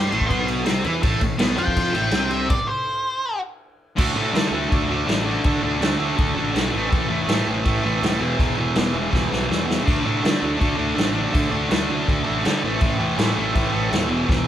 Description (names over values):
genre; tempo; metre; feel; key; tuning
garage rock duo or trio; 163 BPM; 4/4; straight; A minor; A4 = 440 Hz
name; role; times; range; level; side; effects
octave-fuzz lead guitar; melody; 0.0-3.4 s; C5 to C6; -24 LUFS; left 1 dB; distortion
fuzz guitar; riff; 0.0-14.5 s; E2 to G4; -22 LUFS; right 1 dB; distortion
fuzz picked electric bass; bass; 0.0-14.4 s; E1 to D3; -27 LUFS; equal; overdrive
vintage drum kit; drums; 0.1-14.4 s; crash cymbal, kick drum, snare drum, splash cymbal; -23 LUFS; equal; none
room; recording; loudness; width
moderate large studio reverb, RT60 0.9 s; band playing live in one room; -19 LUFS; side -11 dB against mid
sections
0.0-4.0 A section; 4.0-14.5 B section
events
lead electric guitar solo 0.0-4.0; stop 2.5-4.0; drum fill 9.1-9.9, 14.3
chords
0.0 Am; 4.0 D5; 6.7 A5; 8.2 E5; 9.9 D5; 12.6 A5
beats
0.30 0.67 | 1.04 1.41 1.77 2.14 | 2.51 2.87 3.24 3.61 | 3.98 4.34 4.71 5.08 | 5.45 5.82 6.18 6.55 | 6.92 7.29 7.66 8.02 | 8.39 8.76 9.13 9.49 | 9.86 10.23 10.60 10.96 | 11.33 11.70 12.07 12.44 | 12.80 13.17 13.54 13.91 | 14.28